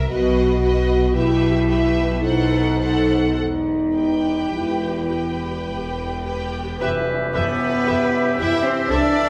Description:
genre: classical, slow romantic movement for symphony orchestra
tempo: 51-60 BPM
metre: 3/4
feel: rubato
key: E minor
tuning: A4 = 442 Hz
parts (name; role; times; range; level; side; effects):
- rich studio violin section; melody; 0.0-9.0 s; D#5 to G5; -33 LUFS; equal; none
- rich studio violin section; second line; 0.0-9.3 s; B4 to E5; -32 LUFS; equal; none
- warm studio viola section; accompaniment; 0.0-9.0 s; F#4 to C5; -32 LUFS; equal; none
- mellow French horn section; sustained chords; 0.1-9.3 s; B3 to F#4; -23 LUFS; equal; none
- rich studio cello section; bass; 0.1-9.3 s; E2 to E4; -28 LUFS; equal; none
- rich studio double bass section; bass; 0.1-9.0 s; E1 to E2; -28 LUFS; equal; none
- cymbal swell and tam-tam; percussion; 3.4-9.3 s; none; -34 LUFS; equal; none
- bright concert flute; second line; 6.8-9.3 s; E5; -28 LUFS; equal; none
- clear clarinet; second line; 6.8-9.3 s; G4 to B4; -29 LUFS; equal; none
- warm oboe; second line; 6.8-9.3 s; G4 to A4; -30 LUFS; equal; none
- warm bassoon; accompaniment; 6.8-9.3 s; E3; -30 LUFS; equal; none
room: wet recital hall reverb, RT60 1.6 s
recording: recorded in a church or concert hall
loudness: -20 LUFS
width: mono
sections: 0.0-6.8 A section; 6.8-9.3 B section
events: band accent 6.8-7.9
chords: 0.1 B; 1.1 Em/B; 2.2 B7b9; 3.4 Em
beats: | 0.10 1.14 2.23 | 3.38 4.53 5.66 | 6.80 7.87 8.91

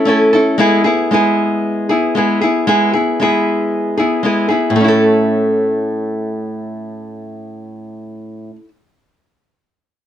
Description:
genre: pop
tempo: 116 BPM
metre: 4/4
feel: straight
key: A major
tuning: A4 = 440 Hz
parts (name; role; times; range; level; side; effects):
- nylon-string guitar; accompaniment; 0.0-8.7 s; A2 to A4; -13 LUFS; equal; none
room: light reverb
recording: dark, warm production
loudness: -12 LUFS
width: side -10 dB against mid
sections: 0.0-4.7 A section; 4.7-8.9 B section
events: none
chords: 0.0 A; 0.6 E/G#; 4.7 A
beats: 0.07 | 0.59 1.11 1.63 2.15 | 2.67 3.19 3.71 4.23 | 4.75 5.27 5.79 6.31 | 6.83 7.34 7.86 8.38

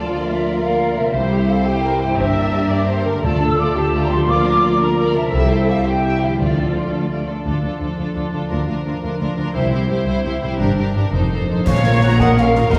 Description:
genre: cinematic, heroic adventure film score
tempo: 114 BPM (dotted quarters)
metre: 6/8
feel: straight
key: D minor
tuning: A4 = 440 Hz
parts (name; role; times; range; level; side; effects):
- warm symphonic violin section; melody; 0.0-12.8 s; A4 to Bb5; -32 LUFS; equal; none
- mellow hollow flute section; second line; 0.0-7.3, 11.7-12.8 s; C5 to E6; -25 LUFS; equal; none
- warm symphonic violin section; second line; 0.0-12.8 s; A3 to Db5; -30 LUFS; equal; none
- warm symphonic viola section; accompaniment; 0.0-12.8 s; D4 to E5; -26 LUFS; equal; none
- dark French horn section; sustained chords; 0.0-7.4, 12.0-12.6 s; F3 to F4; -26 LUFS; equal; none
- concert harp; arpeggios; 0.0-12.8 s; F2 to F5; -28 LUFS; equal; none
- warm symphonic cello section; bass; 0.0-12.8 s; C2 to Bb2; -24 LUFS; equal; none
- rich symphonic double bass section; bass; 1.1-12.8 s; F1 to Eb2; -26 LUFS; equal; none
- timpani; percussion; 3.2-6.9 s; D3; -30 LUFS; equal; none
- warm oboe; second line; 11.7-12.8 s; Bb4 to Gb5; -29 LUFS; equal; none
- concert snare drum, clash cymbals and concert bass drum; drums; 11.7-12.8 s; none; -22 LUFS; equal; none
room: wet scoring stage reverb, RT60 1.7 s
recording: heard from further back in the room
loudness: -18 LUFS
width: mono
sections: 0.0-7.5 A section; 7.5-11.7 B section; 11.7-12.8 C section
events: none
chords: 0.1 Bb/D; 1.1 C; 2.2 Gm; 3.2 Dm; 4.3 Bb/D; 5.3 C; 6.4 Dm; 8.5 Bb/D; 9.6 C; 10.6 Gm; 11.1 F7; 11.7 Bbm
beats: | 0.09 0.61 | 1.14 1.66 | 2.18 2.70 | 3.23 3.75 | 4.27 4.80 | 5.33 5.86 | 6.39 6.93 | 7.46 7.99 | 8.51 9.03 | 9.56 10.08 | 10.61 11.14 | 11.67 12.20 | 12.72

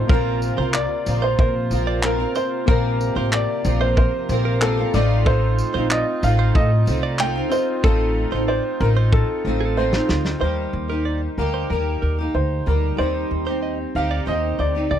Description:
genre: acoustic pop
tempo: 93 BPM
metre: 4/4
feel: straight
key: Bb major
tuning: A4 = 440 Hz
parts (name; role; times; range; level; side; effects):
- warm upright piano; melody; 0.0-15.0 s; A4 to G5; -24 LUFS; left 1 dB; none
- clear baby grand piano; accompaniment; 0.0-15.0 s; G3 to Eb5; -33 LUFS; left 10 dB; none
- picked steel-string acoustic guitar; accompaniment; 0.0-15.0 s; Bb2 to Bb4; -25 LUFS; right 1 dB; double-tracked left and right
- hand-pumped harmonium; sustained chords; 0.0-10.4 s; C3 to G4; -32 LUFS; right 2 dB; none
- upright bass; bass; 0.0-15.0 s; A1 to Bb2; -21 LUFS; equal; none
- direct-recorded clean electric guitar; arpeggios; 0.1-15.0 s; A4 to Eb5; -29 LUFS; right 10 dB; none
- loose indie drum kit; drums; 0.1-10.4 s; handclaps, kick drum, snare drum, tambourine; -20 LUFS; equal; none
room: little or no reverb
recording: dry, close 1970s-style studio recording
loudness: -18 LUFS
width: side -10 dB against mid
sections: 0.0-10.4 A section; 10.4-15.0 B section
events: drum fill 7.8-10.4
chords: 0.1 Bbsus2; 4.9 F7/A; 10.4 Eb; 13.0 Cm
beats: | 0.10 0.74 1.39 2.04 | 2.68 3.33 3.97 4.62 | 5.26 5.91 6.55 7.19 | 7.84 8.48 9.12 9.77 | 10.41 11.05 11.70 12.34 | 12.98 13.63 14.27 14.91

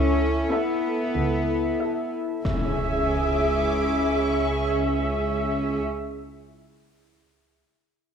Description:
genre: cinematic, suspense film score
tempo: 93 BPM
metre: 4/4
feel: straight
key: C# phrygian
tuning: A4 = 440 Hz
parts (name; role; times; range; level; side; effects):
- warbly tape-like pad; sustained chords; 0.0-5.8 s; E4 to E5; -28 LUFS; left 3 dB; chorus, built-in reverb, phaser
- rich symphonic cello section; bass; 0.0-5.8 s; B3 to C#4; -28 LUFS; right 1 dB; none
- warm symphonic double bass section; bass; 0.0-5.8 s; C#2; -28 LUFS; right 2 dB; none
- dark symphonic viola section; accompaniment; 0.5-5.8 s; G#4 to E5; -26 LUFS; right 1 dB; none
- impact; sound effects; 2.5-6.1 s; none; -30 LUFS; left 1 dB; none
- warm symphonic violin section; texture; 2.5-4.7 s; G#5 to D6; -36 LUFS; left 3 dB; none
room: moderate scoring stage reverb, RT60 1.7 s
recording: none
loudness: -22 LUFS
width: side -7 dB against mid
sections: 0.0-2.5 A section; 2.5-5.0 B section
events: impact 2.5-5.0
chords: 0.0 Asus2/C#; 2.5 C#m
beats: 0.52 1.17 1.81 | 2.46 3.10 3.75 4.39

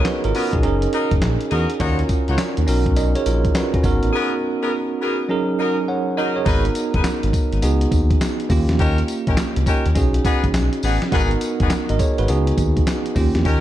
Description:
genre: R&B, new jack swing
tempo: 103 BPM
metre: 4/4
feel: swing 65% on 16ths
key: G# dorian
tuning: A4 = 436 Hz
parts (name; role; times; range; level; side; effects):
- bell-like tine electric piano; accompaniment; 0.0-13.6 s; F#3 to F#5; -22 LUFS; right 3 dB; medium stereo tremolo
- warm horn section; stabs; 0.0-13.6 s; B3 to C#5; -25 LUFS; left 2 dB; digital delay
- smooth gliding synth bass; bass; 0.0-13.6 s; F#1 to E2; -20 LUFS; equal; none
- dusty soul sampler-style drum kit; drums; 0.1-13.6 s; handclaps, hi-hat, kick drum, snare drum, tambourine; -21 LUFS; left 1 dB; none
- cowbell; percussion; 1.8-3.7 s; none; -38 LUFS; equal; none
room: light reverb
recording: dark, warm production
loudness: -17 LUFS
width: side -12 dB against mid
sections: 0.0-6.5 A section; 6.5-13.6 B section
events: break 4.1-6.5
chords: 0.0 G#m9; 0.6 F#69; 1.8 D#m9; 2.7 Bmaj9; 3.8 G#m9; 5.3 F#69; 6.5 G#m7; 7.6 C#7sus4; 8.5 D#7; 10.0 B6; 11.1 G#m7; 12.3 C#7sus4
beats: 0.05 0.64 1.22 | 1.80 2.38 2.97 3.55 | 4.13 4.71 5.30 5.88 | 6.46 7.04 7.63 8.21 | 8.79 9.37 9.96 10.54 | 11.12 11.70 12.29 12.87 | 13.45

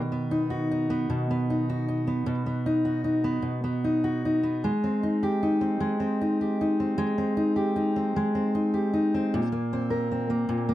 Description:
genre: pop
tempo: 51 BPM (dotted quarters)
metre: 6/8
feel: straight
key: unclear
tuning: A4 = 443 Hz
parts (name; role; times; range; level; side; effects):
- fingerpicked steel-string acoustic guitar; solo; 0.0-10.7 s; Bb2 to Bb4; -24 LUFS; equal; slapback echo
room: light reverb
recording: dry, close 1970s-style studio recording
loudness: -24 LUFS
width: side -14 dB against mid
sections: 0.0-10.7 A section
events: none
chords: 0.0 B; 4.6 Abmaj7; 9.3 Bbsus2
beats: 1.09 | 2.26 3.44 | 4.63 5.81 | 6.99 8.16 | 9.33 10.51

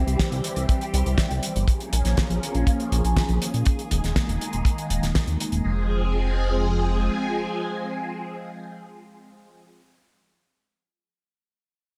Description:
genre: italo disco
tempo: 121 BPM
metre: 4/4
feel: straight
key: F minor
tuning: A4 = 440 Hz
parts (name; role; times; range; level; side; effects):
- phased string machine; sustained chords; 0.0-9.6 s; Eb3 to Ab4; -30 LUFS; equal; ensemble chorus, phaser
- chorused synth bass; bass; 0.0-7.1 s; Eb1 to Bb2; -26 LUFS; equal; none
- damped 70s drum kit; drums; 0.1-5.6 s; hi-hat, snare drum; -31 LUFS; equal; gated reverb
- kick drum; drums; 0.2-5.3 s; none; -24 LUFS; equal; none
room: small room ambience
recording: none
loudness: -24 LUFS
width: mono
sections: 0.0-5.6 A section; 5.6-9.6 B section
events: none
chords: 0.0 C; 1.7 Bbm7; 3.7 Ebsus4; 5.6 Fm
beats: 0.19 0.69 1.18 | 1.68 2.18 2.67 3.17 | 3.66 4.16 4.66 5.15 | 5.65 6.14 6.64 7.13 | 7.63 8.13 8.62 9.12

